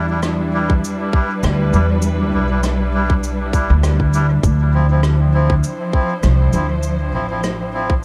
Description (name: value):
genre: ambient dub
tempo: 100 BPM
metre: 4/4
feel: swing 55% on 16ths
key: unclear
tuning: A4 = 440 Hz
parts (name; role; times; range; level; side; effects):
- warm studio string section; sustained chords; 0.0-8.0 s; F3 to C5; -25 LUFS; equal; none
- melodica; stabs; 0.0-7.9 s; F3 to E4; -26 LUFS; equal; dub echo
- upright bass; bass; 0.0-8.0 s; A1 to E2; -19 LUFS; equal; none
- cabasa and rim click; drums; 0.2-7.6 s; none; -31 LUFS; equal; dub echo
- electronic kick drum; drums; 0.7-8.0 s; none; -18 LUFS; equal; overdrive
room: light reverb, studio ambience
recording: dark, warm production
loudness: -17 LUFS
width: mono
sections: 0.0-8.0 A section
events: none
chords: 0.0 Em7; 4.4 Dm9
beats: 0.23 0.83 1.43 | 2.03 2.63 3.23 3.83 | 4.43 5.03 5.63 6.23 | 6.83 7.43 8.03